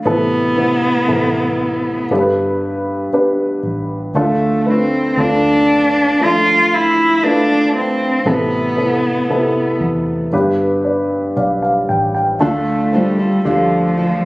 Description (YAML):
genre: pop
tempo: 58 BPM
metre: 4/4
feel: straight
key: unclear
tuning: A4 = 440 Hz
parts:
  - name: dark upright piano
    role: accompaniment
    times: 0.0-14.2 s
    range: G2 to G5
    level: -16 LUFS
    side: equal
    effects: none
  - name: warm cello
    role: melody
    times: 0.1-14.2 s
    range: F3 to F4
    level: -15 LUFS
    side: equal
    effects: none
  - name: vintage muted fingered electric bass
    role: bass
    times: 0.1-14.2 s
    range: G1 to E2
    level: -25 LUFS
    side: equal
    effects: none
  - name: flamenco guitar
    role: arpeggios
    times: 12.4-14.2 s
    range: D3 to A4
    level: -20 LUFS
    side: right 1 dB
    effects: tape echo
room: light reverb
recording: recorded on a phone in the room, studio reverb, compression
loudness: -13 LUFS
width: side -20 dB against mid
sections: 0.0-14.2 A section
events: upright piano fill 10.3-12.4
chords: 0.1 Amadd9; 2.1 G; 4.1 Dm; 8.3 Amadd9; 10.3 G; 12.4 Dm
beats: | 0.06 1.08 2.10 3.12 | 4.15 5.17 6.20 7.22 | 8.25 9.29 10.33 11.37 | 12.41 13.45